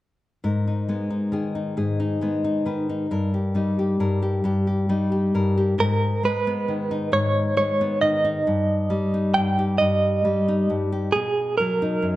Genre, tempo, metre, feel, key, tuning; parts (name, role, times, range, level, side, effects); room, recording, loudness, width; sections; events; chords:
acoustic folk-pop ballad; 45 BPM (dotted quarters); 6/8; straight; A4 = 436 Hz
nylon-string guitar; accompaniment; 0.4-12.2 s; F#2 to B4; -22 LUFS; left 1 dB
direct-recorded clean electric guitar; melody; 5.8-12.2 s; G#4 to G5; -22 LUFS; right 2 dB; tremolo
wet large studio reverb, RT60 1.4 s; dark, warm production; -20 LUFS; side -15 dB against mid
0.4-5.8 A section; 5.8-12.2 B section
0.4 G#madd9; 3.1 D#/G; 5.8 G#m; 8.5 D#/G; 11.1 B